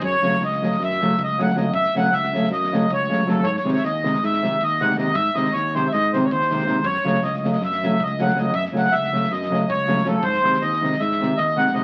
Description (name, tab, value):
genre	balkan folk, Balkan wedding band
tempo	317 BPM (eighths)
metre	9/8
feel	straight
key	unclear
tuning	A4 = 440 Hz
part	accordion	melody	0.0-11.8 s	A4 to F#5	-23 LUFS	equal	none
part	modern bright fingered electric bass	bass	0.0-11.7 s	C#2 to G#2	-30 LUFS	equal	none
part	loose indie drum kit	percussion	0.0-11.8 s	kick drum, snare drum	-41 LUFS	equal	none
part	nylon-string guitar	accompaniment	0.2-11.8 s	B#2 to C#4	-25 LUFS	equal	none
room	wet studio reverb, RT60 0.8 s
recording	very old 78 rpm record, vinyl crackle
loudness	-21 LUFS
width	mono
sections	0.0-11.8 A section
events	none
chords	0.0 F#m; 3.4 G#; 6.8 F#m; 10.2 G#